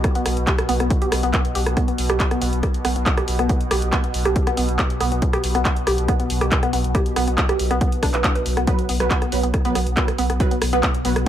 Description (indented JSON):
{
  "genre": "driving peak-time techno",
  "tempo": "139 BPM",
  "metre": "4/4",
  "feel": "straight",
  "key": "unclear",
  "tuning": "A4 = 439 Hz",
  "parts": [
    { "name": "saturated sub bass", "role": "bass", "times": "0.0-11.3 s", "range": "B1", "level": "-23 LUFS", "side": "equal", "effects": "overdrive, sidechain pumping, low-pass filter" },
    { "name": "deep dark ambient pad", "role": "drone", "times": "0.0-11.3 s", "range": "B2", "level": "-28 LUFS", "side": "equal", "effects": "chorus, built-in reverb, sidechain pumping" },
    { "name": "electronic kick drum", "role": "drums", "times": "0.0-10.9 s", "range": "none", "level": "-21 LUFS", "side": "equal", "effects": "none" },
    { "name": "punchy analog drum machine", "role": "drums", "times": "0.0-11.2 s", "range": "handclaps, hi-hat, rim click", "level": "-24 LUFS", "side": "equal", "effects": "sidechain pumping on hats" },
    { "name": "woody wave-folded pluck", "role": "riff", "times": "0.2-11.1 s", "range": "B3 to B4", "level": "-25 LUFS", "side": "equal", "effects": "chorus, tube saturation, sidechain pumping, dub echo" },
    { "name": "rave stab", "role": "stabs", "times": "8.7-11.1 s", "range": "F#3 to B4", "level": "-24 LUFS", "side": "right 4 dB", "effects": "chorus, built-in reverb, sidechain pumping, tape echo" }
  ],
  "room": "light reverb",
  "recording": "none",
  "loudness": "-18 LUFS",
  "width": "side -11 dB against mid",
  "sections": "0.0-11.3 A section",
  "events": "none",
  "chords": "0.0 B5"
}